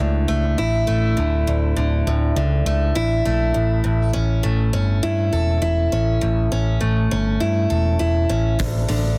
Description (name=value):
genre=quiet-loud alternative rock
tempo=101 BPM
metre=4/4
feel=straight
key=unclear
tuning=A4 = 441 Hz
part: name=picked steel-string acoustic guitar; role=arpeggios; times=0.0-9.2 s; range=D2 to A4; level=-24 LUFS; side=equal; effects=none
part: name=overdriven picked electric bass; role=bass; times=0.0-9.1 s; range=D1 to G2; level=-22 LUFS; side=equal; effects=none
part: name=big rock drum kit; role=drums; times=8.6-9.0 s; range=hi-hat, kick drum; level=-28 LUFS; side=equal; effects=none
room=small room reverb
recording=heavily compressed radio sound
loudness=-20 LUFS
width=mono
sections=0.0-9.2 A section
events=none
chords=0.0 Dsus2; 3.6 A; 8.6 D5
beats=0.29 0.88 | 1.48 2.07 2.66 3.25 | 3.85 4.44 5.03 5.63 | 6.22 6.81 7.41 8.00 | 8.59